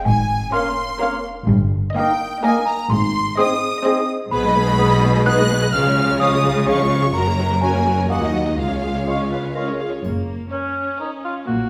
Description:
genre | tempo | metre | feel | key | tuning
cinematic, playful, whimsical film cue | 126 BPM | 3/4 | straight | Ab major, F# major from 4.3 s | A4 = 439 Hz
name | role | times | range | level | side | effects
worn celesta | melody | 0.0-9.5 s | D#5 to F#6 | -27 LUFS | equal | none
mellow silver concert flute | second line | 0.0-9.5 s | D#5 to F#6 | -28 LUFS | equal | none
bright symphonic violin section | second line | 0.1-11.3 s | C#4 to F#6 | -29 LUFS | equal | none
rich chamber cello section | bass | 0.1-11.7 s | C#2 to C#3 | -25 LUFS | equal | none
rich chamber double bass section | bass | 0.1-11.7 s | F#1 to D#2 | -24 LUFS | equal | none
mellow cor anglais | second line | 0.5-11.7 s | C#4 to F5 | -30 LUFS | equal | none
warm clarinet | second line | 0.5-10.0 s | F#4 to Db5 | -32 LUFS | equal | none
clear bassoon | accompaniment | 0.5-9.7 s | G#3 to C#4 | -30 LUFS | equal | none
rich chamber viola section | accompaniment | 0.5-11.7 s | E#3 to B4 | -27 LUFS | equal | none
mellow French horn section | sustained chords | 0.5-9.7 s | G#3 to Eb4 | -32 LUFS | equal | none
rich chamber violin section | melody | 0.6-11.3 s | A#4 to F#5 | -31 LUFS | equal | none
triangle | percussion | 10.0-11.0 s | none | -43 LUFS | equal | none
room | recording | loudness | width
wet recital hall reverb, RT60 1.3 s | recorded in a church or concert hall | -19 LUFS | mono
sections
0.0-10.0 A section; 10.0-11.7 B section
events
none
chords
0.1 Bbm7/Ab; 1.5 Eb/G; 2.9 Ab; 4.3 G#m/B; 5.7 C#; 7.1 F#; 8.1 D#m; 8.6 C#; 10.0 F#

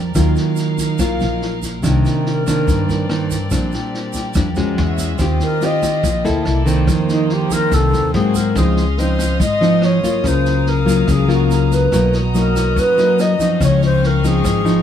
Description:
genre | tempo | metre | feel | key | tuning
bossa nova | 143 BPM | 4/4 | straight | Db major from 8.6 s | A4 = 437 Hz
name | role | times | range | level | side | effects
nylon-string guitar | accompaniment | 0.0-14.8 s | F2 to A4 | -18 LUFS | left 1 dB | none
warm studio string section | sustained chords | 0.0-14.8 s | Bb3 to Eb6 | -28 LUFS | equal | none
upright bass | bass | 0.0-14.8 s | Ab1 to Ab2 | -18 LUFS | left 1 dB | none
vintage drum kit | drums | 0.1-14.7 s | kick drum, rim click, snare drum | -25 LUFS | equal | none
tube shaker | percussion | 0.1-14.8 s | none | -33 LUFS | right 9 dB | none
wooden-headed alto flute | melody | 2.1-2.9, 5.4-14.8 s | Eb4 to Eb5 | -19 LUFS | equal | none
room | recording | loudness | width
little or no reverb | none | -14 LUFS | side -9 dB against mid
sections
0.0-8.6 A section; 8.6-14.8 B section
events
alto flute solo 0.0-8.6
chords
0.1 Ebmadd9; 1.8 Cm9; 3.5 Bb69; 4.8 E69; 5.2 Eb69; 6.5 C13; 6.9 F7sus4; 8.1 Ab9; 8.6 Dbmaj9; 10.2 Gbmaj7/Db; 11.9 Cbmaj7; 13.6 Dbmaj9

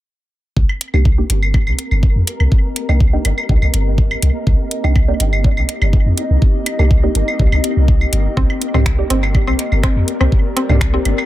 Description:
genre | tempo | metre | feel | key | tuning
minimal techno | 123 BPM | 4/4 | straight | C minor | A4 = 440 Hz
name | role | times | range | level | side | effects
punchy sub bass | bass | 0.6-11.1 s | G1 to F2 | -15 LUFS | equal | tube saturation, sidechain pumping
electronic kick drum | drums | 0.6-10.9 s | none | -14 LUFS | equal | none
flickering grainy texture | texture | 1.3-11.3 s | Bb3 to Bb4 | -28 LUFS | equal | built-in reverb, sidechain pumping
warbly tape-like pad | texture | 1.3-11.3 s | C4 to Eb5 | -25 LUFS | left 3 dB | chorus, built-in reverb, sidechain pumping
electronic woodblock, claves and toms | percussion | 0.7-11.3 s | none | -24 LUFS | right 1 dB | analog delay
garage drum kit | drums | 0.8-11.2 s | finger snaps, hi-hat | -22 LUFS | right 1 dB | dub echo
filtered dub chord stab | stabs | 0.9-11.0 s | Bb3 to G4 | -25 LUFS | right 2 dB | phaser, dub echo
mallet-like synth pluck | riff | 8.4-11.0 s | C4 | -22 LUFS | equal | chorus, sidechain pumping, dub echo
room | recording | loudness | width
digital ambience | echo-heavy mix | -13 LUFS | side -15 dB against mid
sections
0.6-11.3 A section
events
none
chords
0.6 Cm7

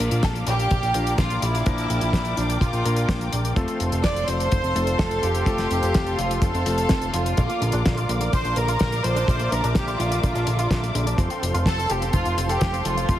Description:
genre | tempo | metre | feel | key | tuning
italo disco | 126 BPM | 4/4 | straight | unclear | A4 = 440 Hz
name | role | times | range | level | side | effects
rich symphonic string section | sustained chords | 0.0-13.2 s | A4 to D6 | -30 LUFS | left 1 dB | shimmer reverb
warm electric grand piano | stabs | 0.0-7.3 s | F3 to Bb4 | -30 LUFS | left 2 dB | shimmer reverb
fat analog bass | bass | 0.0-13.2 s | F1 to Bb1 | -25 LUFS | equal | none
damped 70s drum kit | drums | 0.0-13.2 s | hi-hat, snare drum | -28 LUFS | left 1 dB | studio ambience
warm studio violin section | melody | 0.2-13.2 s | D4 to D5 | -26 LUFS | equal | digital delay, shimmer reverb
kick drum | drums | 0.2-13.2 s | none | -23 LUFS | equal | studio ambience
electric guitar with an envelope filter | arpeggios | 7.4-13.2 s | D3 to A4 | -30 LUFS | right 1 dB | tremolo, digital delay, shimmer reverb
room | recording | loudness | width
moderate lush hall reverb, RT60 2.1 s | heavily compressed radio sound, multiband compression | -20 LUFS | side -12 dB against mid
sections
0.0-13.2 A section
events
none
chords
0.0 Bb; 3.6 F; 7.4 Bb; 11.2 F

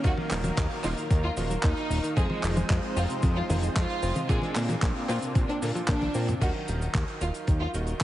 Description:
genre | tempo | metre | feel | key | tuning
italo disco | 113 BPM | 4/4 | straight | Eb dorian | A4 = 440 Hz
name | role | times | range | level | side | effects
rich studio violin section | melody | 0.0-8.0 s | Ab3 to Ab4 | -34 LUFS | equal | ping-pong delay
lush unison pad | sustained chords | 0.0-6.4 s | Ab3 to F5 | -36 LUFS | right 1 dB | chorus, phaser
direct-recorded clean electric guitar | arpeggios | 0.0-6.4 s | C3 to Eb4 | -36 LUFS | left 1 dB | spring reverb, ping-pong delay
clear electric grand piano | stabs | 0.0-8.0 s | Bb2 to F5 | -36 LUFS | right 2 dB | none
fat analog bass | bass | 0.0-8.0 s | Eb1 to Bb2 | -29 LUFS | equal | none
damped 70s drum kit | drums | 0.0-8.0 s | cabasa, crash cymbal, handclaps, hi-hat, toms | -34 LUFS | equal | small room ambience
electronic kick drum | drums | 0.0-8.0 s | none | -26 LUFS | equal | small room ambience
room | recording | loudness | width
light reverb, small room ambience | heavily compressed radio sound, nothing above 10.7 kHz | -25 LUFS | side -14 dB against mid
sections
0.0-6.4 A section; 6.4-8.0 B section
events
drum fill 5.9-6.4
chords
0.0 Ebmadd9; 2.2 Fm7; 4.3 Bbadd9; 6.4 Ebm

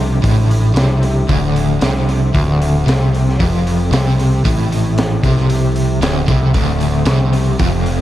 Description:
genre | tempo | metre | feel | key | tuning
psychedelic rock | 114 BPM | 4/4 | straight | D minor | A4 = 438 Hz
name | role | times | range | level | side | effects
mellow tonewheel organ | sustained chords | 0.0-8.0 s | F3 to A4 | -26 LUFS | right 4 dB | none
crunchy overdriven guitar | riff | 0.0-8.0 s | D2 to C3 | -15 LUFS | equal | tremolo, dub echo
growling picked electric bass | bass | 0.0-8.0 s | D1 to C2 | -18 LUFS | equal | overdrive
crunchy breakbeat drum kit | drums | 0.2-8.0 s | hi-hat, kick drum, snare drum | -20 LUFS | equal | dub echo
room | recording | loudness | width
light reverb | echo-heavy mix | -12 LUFS | side -13 dB against mid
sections
0.0-8.0 A section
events
none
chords
0.0 Dm

